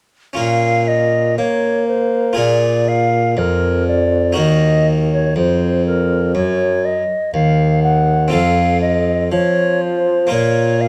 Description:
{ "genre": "classical, baroque-style sonata movement with continuo", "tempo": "60 BPM", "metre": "4/4", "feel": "rubato", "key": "Bb minor", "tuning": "A4 = 440 Hz", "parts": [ { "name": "harpsichord", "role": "accompaniment", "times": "0.3-10.9 s", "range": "Eb2 to Bb4", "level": "-21 LUFS", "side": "equal", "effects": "none" }, { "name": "wooden flute", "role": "melody", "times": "0.4-10.9 s", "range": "Bb4 to Gb5", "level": "-20 LUFS", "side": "equal", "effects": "none" }, { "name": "mellow bassoon", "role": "bass", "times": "0.4-10.9 s", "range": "Eb2 to Bb3", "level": "-20 LUFS", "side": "equal", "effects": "none" } ], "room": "light reverb", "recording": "close, detailed microphones", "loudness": "-16 LUFS", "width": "mono", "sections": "0.4-10.9 A section", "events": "none", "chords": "0.4 Bbm; 2.4 Bb5; 4.4 Ebm; 8.3 F; 10.3 Bb5" }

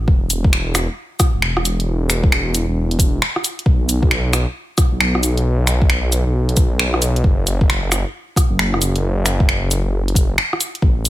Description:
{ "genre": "future garage", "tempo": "134 BPM", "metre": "4/4", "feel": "swing 64% on 16ths", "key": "unclear", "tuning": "A4 = 440 Hz", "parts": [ { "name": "swelling detuned saw bass", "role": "bass", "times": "0.0-11.1 s", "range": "E1 to B1", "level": "-18 LUFS", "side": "equal", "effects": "sidechain pumping" }, { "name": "electronic kick drum", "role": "drums", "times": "0.1-10.9 s", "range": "none", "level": "-15 LUFS", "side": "equal", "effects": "studio ambience" }, { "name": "garage drum kit", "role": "drums", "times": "0.3-11.1 s", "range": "cabasa, finger snaps, hi-hat, rim click", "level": "-19 LUFS", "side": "equal", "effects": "studio ambience" } ], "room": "digital ambience", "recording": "none", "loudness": "-15 LUFS", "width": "side -15 dB against mid", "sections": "0.1-11.1 A section", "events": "none", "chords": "none" }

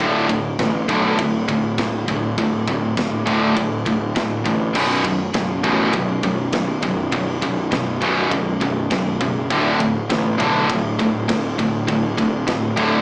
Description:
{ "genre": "heavy metal", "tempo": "101 BPM", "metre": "4/4", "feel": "straight", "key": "unclear", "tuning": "A4 = 440 Hz", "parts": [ { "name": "scooped high-gain guitar", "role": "riff", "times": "0.0-13.0 s", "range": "B1 to D3", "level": "-28 LUFS", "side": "equal", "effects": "none" }, { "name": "tight distorted guitar", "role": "riff", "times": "0.0-13.0 s", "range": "B1 to D3", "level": "-24 LUFS", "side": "equal", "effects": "distortion" }, { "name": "fuzz picked electric bass", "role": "bass", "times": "0.0-13.0 s", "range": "B0 to B1", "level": "-25 LUFS", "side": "equal", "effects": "overdrive" }, { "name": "tight metal drum kit", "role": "drums", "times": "0.0-12.9 s", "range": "crash cymbal, kick drum, ride cymbal, snare drum", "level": "-28 LUFS", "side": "equal", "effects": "none" } ], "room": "light reverb", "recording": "live gig heard through the venue's PA, club reverb, small speaker sound", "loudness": "-20 LUFS", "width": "mono", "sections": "0.0-13.0 A section", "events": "none", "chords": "0.0 D5; 4.8 B5; 9.5 D5" }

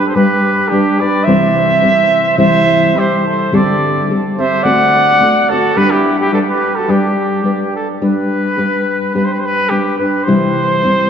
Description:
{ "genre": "mexican folk, mariachi", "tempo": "107 BPM", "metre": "2/4", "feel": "swing 53% on 8ths", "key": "G major", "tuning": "A4 = 440 Hz", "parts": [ { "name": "warm trumpet", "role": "melody", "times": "0.0-11.1 s", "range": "G4 to F#5", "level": "-14 LUFS", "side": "right 1 dB", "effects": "none" }, { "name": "mellow trumpet", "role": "second line", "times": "0.0-7.8 s", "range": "D4 to D5", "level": "-19 LUFS", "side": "right 3 dB", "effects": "none" }, { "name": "nylon-string guitar", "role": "accompaniment", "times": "0.0-11.1 s", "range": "C3 to C5", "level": "-15 LUFS", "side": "left 1 dB", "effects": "none" } ], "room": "wet church reverb, RT60 3.5 s", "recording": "recorded in a church or concert hall, nothing above 7.7 kHz", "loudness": "-11 LUFS", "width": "side -8 dB against mid", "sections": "0.0-8.0 A section; 8.0-11.1 A section", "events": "none", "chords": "0.0 G; 1.3 C; 3.5 D7sus4; 4.6 D7; 5.8 G; 10.3 C" }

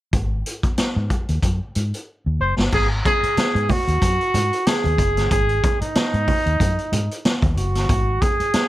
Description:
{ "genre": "funk", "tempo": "93 BPM", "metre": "4/4", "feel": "swing 56% on 16ths", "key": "unclear", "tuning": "A4 = 440 Hz", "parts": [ { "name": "vintage muted fingered electric bass", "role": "bass", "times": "0.1-8.6 s", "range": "Gb1 to Ab2", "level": "-21 LUFS", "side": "equal", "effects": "none" }, { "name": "raw garage drum kit", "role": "drums", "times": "0.1-8.7 s", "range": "crash cymbal, hi-hat, kick drum, snare drum", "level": "-21 LUFS", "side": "equal", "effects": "none" }, { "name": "dark trumpet", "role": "melody", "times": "2.4-8.7 s", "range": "Eb4 to C5", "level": "-21 LUFS", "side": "right 1 dB", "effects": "none" }, { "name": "congas", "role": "percussion", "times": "2.7-8.7 s", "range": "none", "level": "-29 LUFS", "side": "right 5 dB", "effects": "none" } ], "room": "little or no reverb", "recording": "none", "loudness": "-18 LUFS", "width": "side -15 dB against mid", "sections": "0.1-2.7 A section; 2.7-8.7 B section", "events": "drum fill 2.1-2.7", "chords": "0.1 Ab5" }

